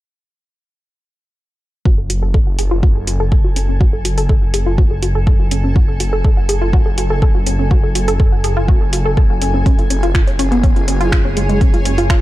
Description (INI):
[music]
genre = melodic techno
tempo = 123 BPM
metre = 4/4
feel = straight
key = F# harmonic minor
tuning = A4 = 438 Hz
[part]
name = wide unison pluck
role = arpeggios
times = 1.9-12.2 s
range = G#3 to F#5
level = -21 LUFS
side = equal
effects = sidechain pumping, tape echo
[part]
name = swelling detuned saw bass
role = bass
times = 1.9-12.2 s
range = F#1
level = -18 LUFS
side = equal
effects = tube saturation, sidechain pumping
[part]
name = electronic kick drum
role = drums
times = 1.9-12.2 s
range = none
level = -12 LUFS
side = equal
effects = small room ambience
[part]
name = granular cloud pad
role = texture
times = 2.3-12.2 s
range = G#4 to G#5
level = -26 LUFS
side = equal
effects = built-in reverb, sidechain pumping
[part]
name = deep house drum kit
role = drums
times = 2.1-12.2 s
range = finger snaps, hi-hat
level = -23 LUFS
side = equal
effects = small room ambience
[sound]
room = digital ambience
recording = dark, warm production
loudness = -12 LUFS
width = side -16 dB against mid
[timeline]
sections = 1.9-12.2 A section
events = filter sweep on synth pluck 1.9-12.2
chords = 1.9 F#madd9; 9.7 C#sus4/F#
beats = | 1.85 2.34 2.83 3.32 | 3.81 4.29 4.78 5.27 | 5.76 6.25 6.73 7.22 | 7.71 8.20 8.68 9.17 | 9.66 10.15 10.64 11.12 | 11.61 12.10